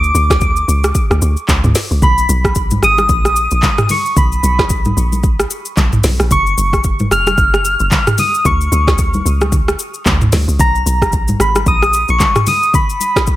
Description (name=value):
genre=amapiano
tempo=112 BPM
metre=4/4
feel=swing 58% on 16ths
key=unclear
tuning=A4 = 440 Hz
part: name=soft struck synth lead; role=melody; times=0.0-13.4 s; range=A#5 to E#6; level=-16 LUFS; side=equal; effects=chorus, tape echo
part: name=deep log drum bass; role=bass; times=0.0-12.2 s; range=E#1 to D2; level=-16 LUFS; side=equal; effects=none
part: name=afro-pop drum kit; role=drums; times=0.0-13.4 s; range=handclaps, hi-hat, kick drum, rim click, shaker, snare drum, toms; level=-15 LUFS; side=equal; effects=none
part: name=congas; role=percussion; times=2.0-13.1 s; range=none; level=-22 LUFS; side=left 1 dB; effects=none
room=little or no reverb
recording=none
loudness=-11 LUFS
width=side -15 dB against mid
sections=0.0-13.4 A section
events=none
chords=0.0 N.C.; 2.0 Bmaj7; 6.3 F#5; 8.5 N.C.; 10.6 G#madd9